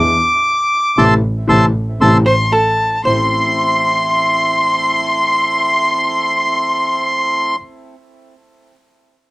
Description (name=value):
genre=tango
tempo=116 BPM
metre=4/4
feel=rubato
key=A minor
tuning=A4 = 441 Hz
part: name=bandoneon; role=melody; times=0.0-7.6 s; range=A5 to E6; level=-14 LUFS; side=equal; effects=cassette tape
part: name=warm concert grand piano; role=accompaniment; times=0.0-7.6 s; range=A1 to G#4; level=-19 LUFS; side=left 2 dB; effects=cassette tape
part: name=bandoneon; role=stabs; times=0.0-7.6 s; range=G#3 to E4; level=-26 LUFS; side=right 2 dB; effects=cassette tape, analog delay
part: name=clear double bass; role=bass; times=0.0-3.3 s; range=A1 to E2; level=-17 LUFS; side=right 1 dB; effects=none
part: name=archtop guitar, miked and amplified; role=second line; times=2.3-7.6 s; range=A4 to C5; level=-17 LUFS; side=right 1 dB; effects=cassette tape
part: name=rich violin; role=second line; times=2.3-7.5 s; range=A5 to C6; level=-18 LUFS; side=left 1 dB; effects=cassette tape
room=moderate booth ambience, RT60 0.2 s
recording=home recording on cassette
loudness=-12 LUFS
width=side -21 dB against mid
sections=0.0-3.0 A section; 3.0-7.2 B section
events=band accent 1.0-3.0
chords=0.0 E7; 1.0 Am; 2.5 N.C.; 3.0 Am